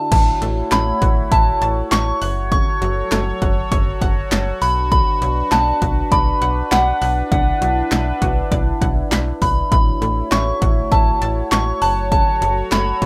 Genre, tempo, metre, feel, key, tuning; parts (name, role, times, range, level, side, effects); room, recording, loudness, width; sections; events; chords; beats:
synth-pop; 100 BPM; 4/4; straight; A4 = 444 Hz
soft synth bell; melody; 0.0-13.1 s; F#5 to C#6; -22 LUFS; equal; chorus, digital delay
sweeping resonant pad; sustained chords; 0.0-13.1 s; F#3 to C#5; -27 LUFS; equal; chorus, phaser
analog pluck; arpeggios; 0.0-13.1 s; C#3 to F#6; -32 LUFS; equal; chorus, digital delay
slap-like FM bass; bass; 0.1-13.1 s; F#1 to B1; -24 LUFS; equal
punchy analog drum machine; drums; 0.1-13.1 s; crash cymbal, handclaps, hi-hat, kick drum, snare drum; -22 LUFS; equal
light reverb; rough home demo mix; -17 LUFS; mono
0.1-13.1 A section
0.1 A6; 2.2 F#m; 4.6 Bm; 9.7 A6; 11.8 F#m
| 0.12 0.72 1.32 1.92 | 2.52 3.12 3.72 4.32 | 4.92 5.52 6.12 6.72 | 7.32 7.92 8.52 9.12 | 9.72 10.32 10.92 11.52 | 12.12 12.72